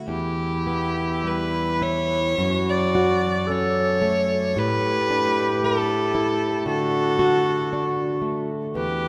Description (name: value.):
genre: celtic folk, Celtic slow air.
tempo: 51-58 BPM.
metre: 4/4.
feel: rubato.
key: E dorian.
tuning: A4 = 438 Hz.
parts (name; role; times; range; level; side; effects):
flamenco guitar; accompaniment; 0.0-9.1 s; E2 to F#4; -27 LUFS; equal; none.
rich fiddle; melody; 0.1-9.1 s; G4 to D5; -27 LUFS; equal; none.
bright baroque flute; second line; 0.1-9.1 s; E4 to B4; -28 LUFS; equal; none.
room: wet cathedral reverb, RT60 5.9 s.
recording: none.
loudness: -22 LUFS.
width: mono.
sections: 0.1-9.1 A section.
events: none.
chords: 0.1 Em; 2.4 F#m; 4.6 Asus4; 6.7 D.